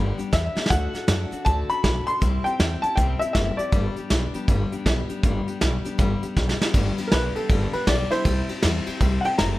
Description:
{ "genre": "rockabilly", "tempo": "159 BPM", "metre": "4/4", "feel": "swing 63% on 8ths", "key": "G major", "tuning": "A4 = 436 Hz", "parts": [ { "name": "picked steel-string acoustic guitar", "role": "accompaniment", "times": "0.0-9.6 s", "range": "G2 to A4", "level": "-29 LUFS", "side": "left 4 dB", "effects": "none" }, { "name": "upright bass", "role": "bass", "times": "0.0-9.5 s", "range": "F#1 to F#2", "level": "-25 LUFS", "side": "equal", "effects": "none" }, { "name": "vintage brush drum kit", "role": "drums", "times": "0.2-9.5 s", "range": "hi-hat, kick drum, ride cymbal, snare drum", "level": "-23 LUFS", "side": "equal", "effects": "none" }, { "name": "warm upright piano", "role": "melody", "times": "0.3-4.3, 7.1-9.6 s", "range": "E4 to C6", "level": "-26 LUFS", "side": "left 1 dB", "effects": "none" } ], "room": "studio reverb", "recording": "none", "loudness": "-20 LUFS", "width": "side -17 dB against mid", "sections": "0.0-6.7 A section; 6.7-9.6 B section", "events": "drum fill 0.5, 6.4-6.7; upright piano solo 6.7-9.6", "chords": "0.0 G; 0.7 D; 2.2 C; 3.7 G; 8.3 C" }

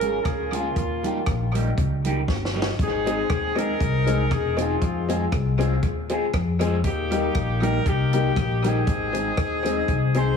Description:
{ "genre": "ska", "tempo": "118 BPM", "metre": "4/4", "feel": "swing 54% on 8ths", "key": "Ab major", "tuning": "A4 = 440 Hz", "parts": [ { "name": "warm horn section", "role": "melody", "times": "0.0-10.4 s", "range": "Ab3 to C5", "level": "-26 LUFS", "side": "equal", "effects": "analog delay" }, { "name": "electric guitar at the edge of break-up", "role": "accompaniment", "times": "0.0-10.3 s", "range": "G3 to Ab4", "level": "-29 LUFS", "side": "right 1 dB", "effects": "phaser, analog delay" }, { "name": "upright bass", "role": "bass", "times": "0.0-10.3 s", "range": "Fb1 to F2", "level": "-25 LUFS", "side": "left 2 dB", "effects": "none" }, { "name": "compact cocktail drum kit", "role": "drums", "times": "0.0-10.3 s", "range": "hi-hat, kick drum, rim click, snare drum", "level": "-28 LUFS", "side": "equal", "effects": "analog delay" }, { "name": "tack piano", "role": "stabs", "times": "3.1-10.3 s", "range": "G3 to Ab4", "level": "-28 LUFS", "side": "left 5 dB", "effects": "none" } ], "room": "light reverb, studio ambience", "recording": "heavily compressed radio sound", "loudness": "-21 LUFS", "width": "side -6 dB against mid", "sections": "0.0-10.4 A section", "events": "drum fill 2.3-2.8", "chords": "0.0 Db; 0.8 Eb; 2.8 Ab; 4.8 Fm; 6.8 Eb; 8.9 Ab" }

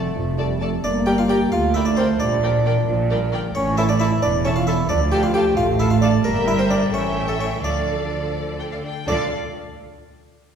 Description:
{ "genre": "cinematic, playful, whimsical film cue", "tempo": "83-89 BPM (dotted quarters)", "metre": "6/8", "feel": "straight", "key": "D minor", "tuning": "A4 = 440 Hz", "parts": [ { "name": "harpsichord", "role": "melody", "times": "0.0-9.3 s", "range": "A4 to G5", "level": "-29 LUFS", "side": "left 1 dB", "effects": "none" }, { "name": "warm bassoon", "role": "accompaniment", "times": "0.0-9.3 s", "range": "A3 to G4", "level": "-23 LUFS", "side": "right 2 dB", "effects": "none" }, { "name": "dark French horn section", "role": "sustained chords", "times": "0.0-9.3 s", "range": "D3 to F4", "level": "-25 LUFS", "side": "right 1 dB", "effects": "none" }, { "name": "rich symphonic cello section", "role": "bass", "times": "0.0-9.3 s", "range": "D2 to D3", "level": "-25 LUFS", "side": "right 2 dB", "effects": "none" }, { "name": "warm studio double bass section", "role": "bass", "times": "0.0-9.3 s", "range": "E1 to D2", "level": "-25 LUFS", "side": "right 1 dB", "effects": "none" }, { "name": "warm studio violin section", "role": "melody", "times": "0.4-9.3 s", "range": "D5 to A5", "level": "-35 LUFS", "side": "left 4 dB", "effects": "none" }, { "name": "warm studio violin section", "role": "second line", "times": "0.4-9.3 s", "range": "D5 to F5", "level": "-33 LUFS", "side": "left 2 dB", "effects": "none" }, { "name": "warm studio viola section", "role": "accompaniment", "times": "0.4-9.3 s", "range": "A4 to Bb4", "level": "-31 LUFS", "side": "left 2 dB", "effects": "none" } ], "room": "wet scoring stage reverb, RT60 1.9 s", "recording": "heard from further back in the room", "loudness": "-18 LUFS", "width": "side -7 dB against mid", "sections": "0.0-9.1 A section; 9.1-10.5 B section", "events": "none", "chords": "0.0 Dm/F; 0.8 Gm; 2.2 Gm/Bb; 3.5 A5; 4.9 Dm; 6.3 Edim/G; 6.9 A7; 7.6 Dm" }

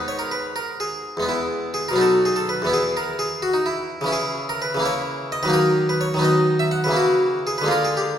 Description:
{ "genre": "classical, baroque-style suite movement for harpsichord", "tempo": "84 BPM (dotted quarters)", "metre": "6/8", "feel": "rubato", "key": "unclear", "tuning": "A4 = 441 Hz", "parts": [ { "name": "harpsichord", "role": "solo", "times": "0.0-8.2 s", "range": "E2 to F#5", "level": "-19 LUFS", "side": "equal", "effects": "none" } ], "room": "wet recital hall reverb, RT60 1.6 s", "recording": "heard from further back in the room", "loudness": "-19 LUFS", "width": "side -9 dB against mid", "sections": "0.0-8.2 A section", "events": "none", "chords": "0.0 G#m; 1.3 E; 2.0 B; 2.7 E5; 4.1 C#m; 4.8 A#dim/C#; 5.5 D#m; 6.2 B/D#; 7.0 A#dim/C#" }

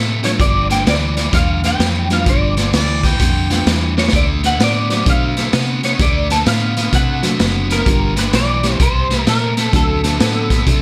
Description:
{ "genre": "electric blues shuffle", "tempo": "128 BPM", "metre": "4/4", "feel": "swing 65% on 8ths", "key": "unclear", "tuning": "A4 = 440 Hz", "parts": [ { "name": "biting overdriven guitar", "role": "riff", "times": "0.0-10.8 s", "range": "G2 to B3", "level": "-23 LUFS", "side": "equal", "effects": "none" }, { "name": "vintage muted fingered electric bass", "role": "bass", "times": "0.0-10.8 s", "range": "F#1 to C3", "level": "-22 LUFS", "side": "equal", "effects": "none" }, { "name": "electric guitar through a small old amp", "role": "melody", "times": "0.2-10.8 s", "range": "A4 to A5", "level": "-23 LUFS", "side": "equal", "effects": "ensemble chorus" }, { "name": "reed electric piano", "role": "accompaniment", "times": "0.2-10.8 s", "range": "F3 to C5", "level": "-26 LUFS", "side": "equal", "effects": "overdrive" }, { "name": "raw garage drum kit", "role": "drums", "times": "0.2-10.8 s", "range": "hi-hat, kick drum, snare drum", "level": "-19 LUFS", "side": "equal", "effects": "none" }, { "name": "clear harmonica", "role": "second line", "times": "2.8-3.7 s", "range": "D5 to G5", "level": "-24 LUFS", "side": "equal", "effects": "overdrive" } ], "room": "little or no reverb", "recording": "none", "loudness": "-15 LUFS", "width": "mono", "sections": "0.0-10.8 A section", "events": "drum fill 3.9", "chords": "0.4 G7; 4.1 D7; 7.9 G7; 8.8 C5; 9.7 D7" }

